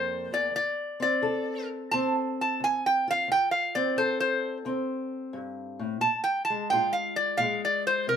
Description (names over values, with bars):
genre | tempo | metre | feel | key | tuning
acoustic country blues, solo or duo | 88 BPM | 4/4 | swing 67% on 8ths | D minor | A4 = 441 Hz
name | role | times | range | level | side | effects
metal-body resonator slide guitar | melody | 0.0-8.2 s | Bb4 to A5 | -25 LUFS | right 1 dB | none
fingerpicked steel-string acoustic guitar | accompaniment | 0.0-8.2 s | D2 to Bb4 | -31 LUFS | left 1 dB | none
room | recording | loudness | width
light reverb | minimal, uncompressed stereo recording | -25 LUFS | side -8 dB against mid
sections
0.0-8.2 A section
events
none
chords
0.0 Gm7 (rootless); 0.5 Dm7; 6.0 Bb5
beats
| 0.55 1.23 1.92 2.60 | 3.28 3.96 4.64 5.33 | 6.01 6.69 7.38 8.06